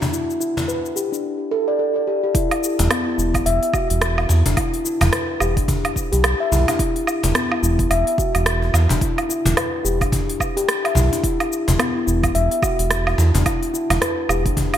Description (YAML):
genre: organic downtempo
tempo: 108 BPM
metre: 4/4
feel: swing 59% on 16ths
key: E minor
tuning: A4 = 444 Hz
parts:
  - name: steel tongue drum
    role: arpeggios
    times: 0.0-14.6 s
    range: B3 to E5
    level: -21 LUFS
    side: left 2 dB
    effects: digital delay
  - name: afro-pop drum kit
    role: drums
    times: 0.0-14.8 s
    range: hi-hat, rim click, shaker, woodblock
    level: -23 LUFS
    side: right 2 dB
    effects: none
  - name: cajon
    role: percussion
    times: 0.0-14.7 s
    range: none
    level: -26 LUFS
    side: left 1 dB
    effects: none
  - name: electronic kick drum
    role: drums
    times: 2.3-14.7 s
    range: none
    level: -23 LUFS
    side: right 1 dB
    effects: none
  - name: round analog bass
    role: bass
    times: 2.8-14.5 s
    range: E1 to E2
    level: -18 LUFS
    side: right 1 dB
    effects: none
room: moderate plate reverb, RT60 1.9 s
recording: bright 1980s-style digital production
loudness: -17 LUFS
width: side -10 dB against mid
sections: 0.0-2.3 A section; 2.3-14.8 B section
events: none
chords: 0.0 Em7; 2.3 E5